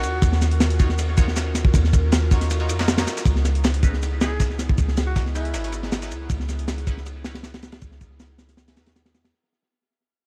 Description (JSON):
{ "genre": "drum and bass, jungle", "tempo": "158 BPM", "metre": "4/4", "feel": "straight", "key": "unclear", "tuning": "A4 = 440 Hz", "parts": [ { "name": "breathy alto saxophone", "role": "melody", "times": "0.0-0.5, 4.2-5.9 s", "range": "Fb4 to Ab4", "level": "-36 LUFS", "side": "equal", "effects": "vintage 12-bit sampler grit, dub echo" }, { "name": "airy breathy pad", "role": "sustained chords", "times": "0.0-9.3 s", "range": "Cb4 to Eb5", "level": "-37 LUFS", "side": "equal", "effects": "chorus" }, { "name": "warm 808-style bass", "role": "bass", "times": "0.0-9.3 s", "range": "Ab1 to F2", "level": "-25 LUFS", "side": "equal", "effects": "none" }, { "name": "crunchy breakbeat drum kit", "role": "drums", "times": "0.0-9.3 s", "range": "kick drum, ride cymbal, snare drum", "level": "-24 LUFS", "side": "equal", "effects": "tape echo" }, { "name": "dusty soul sampler-style drum kit", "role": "drums", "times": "0.0-9.2 s", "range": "hi-hat, shaker, snare drum", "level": "-36 LUFS", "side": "equal", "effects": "overdrive, high-pass filter on perc, high-pass filter on hats, high-pass filter on snare, high-pass filter on room, tape echo" }, { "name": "band-passed chord stab", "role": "stabs", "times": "0.8-8.9 s", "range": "Db4 to Db5", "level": "-38 LUFS", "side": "equal", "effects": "phaser, subtle chorus, cassette tape, dub echo" } ], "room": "studio reverb", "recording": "echo-heavy mix, vinyl crackle", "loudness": "-21 LUFS", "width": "mono", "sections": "0.0-9.3 A section", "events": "drop 0.0-9.3; fade-out 3.3-9.3", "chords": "0.0 Ebm9; 3.3 Dbm9", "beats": "| 0.22 0.60 0.98 1.36 | 1.74 2.12 2.50 2.88 | 3.26 3.64 4.02 4.40 | 4.78 5.16 5.54 5.92 | 6.30 6.68 7.06 7.44 | 7.82 8.20 8.58 8.96" }